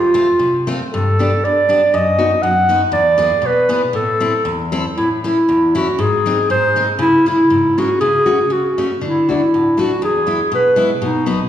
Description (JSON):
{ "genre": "alpine folk, alpine dance band", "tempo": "119 BPM", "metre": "2/4", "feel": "rubato", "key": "A minor, A major from 5.0 s", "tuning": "A4 = 441 Hz", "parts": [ { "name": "warm clarinet", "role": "melody", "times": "0.0-11.3 s", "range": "D#4 to F#5", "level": "-14 LUFS", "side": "equal", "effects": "none" }, { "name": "picked steel-string acoustic guitar", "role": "accompaniment", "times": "0.0-11.4 s", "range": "E2 to A4", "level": "-19 LUFS", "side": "left 2 dB", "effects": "none" } ], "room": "wet recital hall reverb, RT60 1.5 s", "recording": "heard from further back in the room", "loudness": "-13 LUFS", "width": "side -10 dB against mid", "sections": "0.0-5.0 A section; 5.0-11.5 B section", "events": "none", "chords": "0.0 F; 0.9 Gadd9; 1.9 B/F#; 3.0 E7; 4.0 Am; 5.0 A; 6.0 G#; 7.0 C#m; 8.0 F#m/C#; 9.0 D; 10.0 E" }